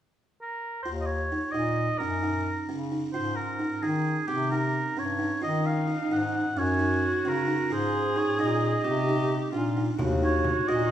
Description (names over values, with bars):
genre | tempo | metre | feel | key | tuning
contemporary instrumental, chamber music in an uneven meter | 262 BPM (eighths) | 5/8 | straight | Eb dorian | A4 = 439 Hz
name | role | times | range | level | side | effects
warm oboe | melody | 0.4-10.9 s | G4 to Gb5 | -30 LUFS | right 2 dB | none
warm bass clarinet | bass | 0.8-10.9 s | Eb2 to Eb3 | -30 LUFS | left 2 dB | none
buzzing kalimba | arpeggios | 0.9-10.8 s | C4 to Gb4 | -30 LUFS | right 2 dB | none
dark viola | second line | 5.4-10.9 s | Eb4 to Ab4 | -30 LUFS | right 1 dB | none
frame drum | percussion | 10.0-10.7 s | none | -33 LUFS | equal | none
room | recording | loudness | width
wet recital hall reverb, RT60 1.7 s | recorded in a church or concert hall | -25 LUFS | side -11 dB against mid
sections
0.9-10.0 A section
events
none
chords
0.0 N.C.; 0.9 Eb5; 2.0 Gb; 3.1 Ab5; 4.3 Cm; 5.4 Ebm; 6.6 Gb; 7.7 Ab; 8.8 Cm; 9.5 Bb; 10.0 Ebm